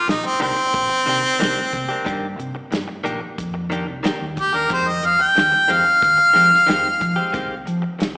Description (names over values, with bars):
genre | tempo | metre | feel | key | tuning
straight-eighth soul blues | 91 BPM | 4/4 | straight | C minor | A4 = 438 Hz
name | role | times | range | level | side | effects
bright harmonica | melody | 0.0-7.6 s | C4 to G5 | -15 LUFS | equal | slapback echo
direct-recorded clean electric guitar | stabs | 0.1-8.0 s | Eb3 to G4 | -26 LUFS | left 1 dB | slapback echo
hollow-body short-scale fingered electric bass | bass | 0.1-8.2 s | Bb1 to F3 | -28 LUFS | equal | none
warm soul drum kit | drums | 0.1-8.2 s | hi-hat, kick drum, snare drum | -25 LUFS | equal | none
room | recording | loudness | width
light reverb, small room ambience | live gig heard through the venue's PA, recital hall reverb, small speaker sound | -16 LUFS | side -26 dB against mid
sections
0.0-8.2 A section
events
harmonica solo 0.0-8.2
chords
0.0 Cm9; 4.7 Fm9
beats
0.08 0.74 1.40 | 2.06 2.72 3.38 4.04 | 4.70 5.36 6.02 6.68 | 7.34 8.00